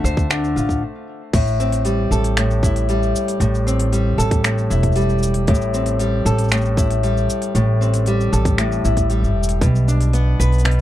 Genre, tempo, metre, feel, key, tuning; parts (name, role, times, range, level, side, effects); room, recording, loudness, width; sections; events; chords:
folktronica; 116 BPM; 4/4; straight; A minor; A4 = 441 Hz
nylon-string guitar; arpeggios; 0.0-10.8 s; A2 to C5; -20 LUFS; left 1 dB; tape echo
upright bass; bass; 0.0-10.8 s; E1 to D2; -18 LUFS; equal
organic electronic drum kit; drums; 0.1-10.8 s; crash cymbal, finger snaps, hi-hat, shaker; -25 LUFS; equal
electronic kick drum; drums; 0.2-9.7 s; -18 LUFS; equal
little or no reverb; dry, close 1970s-style studio recording; -16 LUFS; side -13 dB against mid
0.0-1.3 A section; 1.3-10.8 B section
stop 0.8-1.3
0.0 Dm7; 1.3 Am7; 9.6 G/B